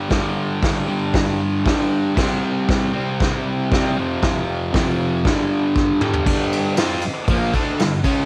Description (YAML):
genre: garage rock duo or trio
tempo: 117 BPM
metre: 4/4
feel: straight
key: unclear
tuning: A4 = 440 Hz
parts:
  - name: fuzz guitar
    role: riff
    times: 0.0-8.3 s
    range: F2 to F4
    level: -22 LUFS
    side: equal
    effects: distortion, cassette tape
  - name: soft brush drum kit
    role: drums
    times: 0.1-8.2 s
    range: crash cymbal, hi-hat, kick drum, ride cymbal, snare drum, toms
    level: -24 LUFS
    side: equal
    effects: cassette tape
room: small room reverb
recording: home recording on cassette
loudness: -20 LUFS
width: mono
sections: 0.0-6.3 A section; 6.3-8.3 B section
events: drum fill 5.8-6.3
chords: 0.0 G5; 2.2 C5; 4.0 F5; 5.2 G5